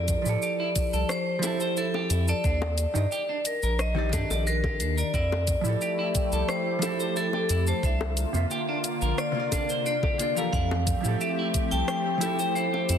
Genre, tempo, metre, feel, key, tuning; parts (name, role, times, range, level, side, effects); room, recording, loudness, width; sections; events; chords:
sunset chillout; 89 BPM; 4/4; straight; F major; A4 = 444 Hz
vibraphone with hard mallets; melody; 0.0-13.0 s; A4 to G5; -30 LUFS; left 1 dB; digital delay
vintage hollow-body jazz guitar; accompaniment; 0.0-13.0 s; C3 to E5; -31 LUFS; moving between left 6 dB and right 6 dB; auto-pan
round analog bass; bass; 0.0-13.0 s; Bb1 to A2; -27 LUFS; equal
electronic kick drum; drums; 0.1-11.7 s; -29 LUFS; equal
smooth R&B drum kit; drums; 0.1-13.0 s; hi-hat, rim click, shaker; -34 LUFS; left 1 dB
clean electric guitar; arpeggios; 0.4-13.0 s; D4 to D5; -34 LUFS; right 2 dB; ping-pong delay
bongos; percussion; 1.4-12.9 s; -38 LUFS; left 5 dB
lush unison pad; sustained chords; 5.1-13.0 s; D3 to G4; -33 LUFS; equal; chorus, phaser
moderate lush hall reverb, RT60 2.0 s; dense, heavily limited modern master; -24 LUFS; side -8 dB against mid
0.0-13.0 A section
0.0 Fmaj9; 2.4 Ebmaj7; 5.1 Fmaj9; 7.8 C9sus4; 10.5 Fmaj9